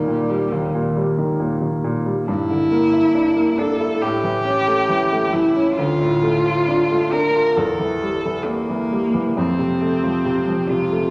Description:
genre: classical, romantic duo for cello and grand piano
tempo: 68 BPM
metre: 4/4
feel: rubato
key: unclear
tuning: A4 = 439 Hz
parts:
  - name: warm cello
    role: melody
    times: 0.0-11.1 s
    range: G3 to Bb4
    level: -22 LUFS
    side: equal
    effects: none
  - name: clear grand piano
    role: accompaniment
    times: 0.0-11.1 s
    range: D2 to F4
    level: -23 LUFS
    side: equal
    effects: none
room: wet recital hall reverb, RT60 1.7 s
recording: none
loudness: -19 LUFS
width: mono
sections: 0.0-11.1 A section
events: none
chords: 0.0 Eb; 2.3 Em7b5/G; 4.0 A7; 5.8 Dm; 7.6 Edim; 9.4 F

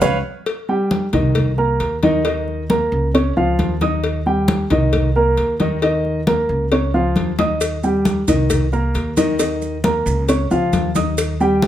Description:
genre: latin, Cuban son and guajira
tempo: 134 BPM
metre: 4/4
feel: straight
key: Eb major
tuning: A4 = 440 Hz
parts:
  - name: dark baby grand piano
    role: arpeggios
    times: 0.0-11.7 s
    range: Eb3 to Eb6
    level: -18 LUFS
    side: equal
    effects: none
  - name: upright bass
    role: bass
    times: 0.0-11.7 s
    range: C2 to Eb2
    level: -21 LUFS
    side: right 1 dB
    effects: none
  - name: bongos and cowbell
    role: percussion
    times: 0.0-11.7 s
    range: none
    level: -26 LUFS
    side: left 5 dB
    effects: none
  - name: congas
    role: percussion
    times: 0.0-11.7 s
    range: none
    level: -22 LUFS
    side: left 1 dB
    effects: none
  - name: maracas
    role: percussion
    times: 0.0-0.1, 7.6-11.7 s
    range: none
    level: -31 LUFS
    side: right 7 dB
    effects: none
room: light reverb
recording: none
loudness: -15 LUFS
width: side -11 dB against mid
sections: 0.5-11.7 A section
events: band accent 0.0-0.5; drum fill 7.4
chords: 0.5 Eb; 1.4 Cm7; 2.2 Eb5; 3.1 Db; 4.0 Eb; 4.9 Cm7; 5.8 Eb5; 6.7 Db; 7.6 Eb; 8.5 Cm7; 9.4 Eb5; 10.3 Db

